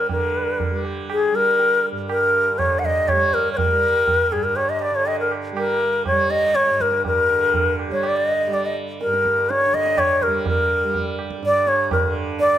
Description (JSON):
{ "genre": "indian classical, Hindustani", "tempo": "122 BPM", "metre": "7/4", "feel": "straight", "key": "G raga todi", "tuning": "A4 = 440 Hz", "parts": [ { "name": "bright bansuri", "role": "melody", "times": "0.0-12.6 s", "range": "Ab4 to F#5-25c", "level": "-18 LUFS", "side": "left 1 dB", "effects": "none" }, { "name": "tanpura", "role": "drone", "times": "0.0-12.6 s", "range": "G2 to G3", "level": "-28 LUFS", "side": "right 4 dB", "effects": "none" }, { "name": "tabla", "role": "percussion", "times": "0.1-12.6 s", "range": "none", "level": "-28 LUFS", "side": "right 3 dB", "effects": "none" } ], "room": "light reverb", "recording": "none", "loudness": "-17 LUFS", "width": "side -11 dB against mid", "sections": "0.1-12.6 A section", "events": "speeding up 0.0-12.6", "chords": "none" }